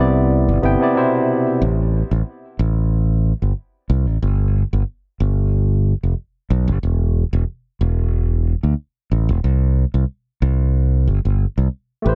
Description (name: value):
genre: sunset chillout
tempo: 92 BPM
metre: 4/4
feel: swing 53% on 16ths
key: unclear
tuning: A4 = 440 Hz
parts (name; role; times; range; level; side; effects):
- barky tine electric piano; accompaniment; 0.0-1.6, 12.0-12.2 s; B2 to G5; -20 LUFS; equal; delay
- modern bright fingered electric bass; bass; 0.0-12.2 s; E1 to D2; -18 LUFS; equal; none
room: digital ambience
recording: dark, warm production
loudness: -19 LUFS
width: mono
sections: 0.0-1.6 A section; 1.6-12.2 A section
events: none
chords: 0.0 Cmaj9; 1.6 N.C.; 9.4 C5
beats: 0.31 0.96 | 1.61 2.27 2.92 3.57 | 4.22 4.88 5.53 6.18 | 6.83 7.49 8.14 8.79 | 9.44 10.09 10.74 11.40 | 12.05